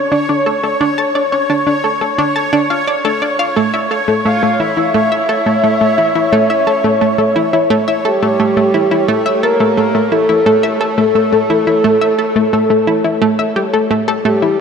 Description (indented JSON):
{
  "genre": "ambient, sequencer-driven space music",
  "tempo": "87 BPM",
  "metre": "4/4",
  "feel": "straight",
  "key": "unclear",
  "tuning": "A4 = 440 Hz",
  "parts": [
    { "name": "analog pluck", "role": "riff", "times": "0.0-14.5 s", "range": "A3 to A5", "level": "-14 LUFS", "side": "equal", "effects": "chorus, ping-pong delay" },
    { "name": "bubbling stepped-filter texture", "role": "texture", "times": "0.0-14.6 s", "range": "C#5", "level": "-18 LUFS", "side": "equal", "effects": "chorus, built-in reverb" },
    { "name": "breathy flute-like synth lead", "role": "melody", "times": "4.3-14.6 s", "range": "G4 to F5", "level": "-15 LUFS", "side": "left 1 dB", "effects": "lush chorus, ping-pong delay" }
  ],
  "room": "wet huge ambient reverb, RT60 8.0 s",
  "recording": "none",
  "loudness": "-11 LUFS",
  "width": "side -6 dB against mid",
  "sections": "0.0-14.6 A section",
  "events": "none",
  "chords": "0.0 Dm; 3.6 A"
}